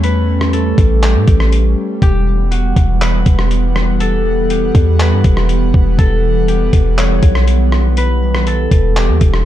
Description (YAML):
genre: hip hop, atmospheric cloud-rap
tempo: 121 BPM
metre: 4/4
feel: half-time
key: E dorian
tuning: A4 = 440 Hz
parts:
  - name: concert harp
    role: melody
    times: 0.0-9.4 s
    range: F#4 to C#5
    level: -20 LUFS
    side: left 3 dB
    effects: digital delay
  - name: airy breathy pad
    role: sustained chords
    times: 0.0-9.4 s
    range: E3 to F#5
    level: -19 LUFS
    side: right 2 dB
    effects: chorus, sidechain pumping
  - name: warm 808-style bass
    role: bass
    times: 0.0-9.4 s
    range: E1 to A2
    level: -13 LUFS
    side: equal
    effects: none
  - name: lo-fi sampler-style drum kit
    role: drums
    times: 0.0-9.4 s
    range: handclaps, hi-hat, kick drum, rim click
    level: -14 LUFS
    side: equal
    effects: none
room: little or no reverb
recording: dark, warm production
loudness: -10 LUFS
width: side -12 dB against mid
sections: 0.0-9.4 A section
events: none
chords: 0.0 A7; 2.0 Emadd9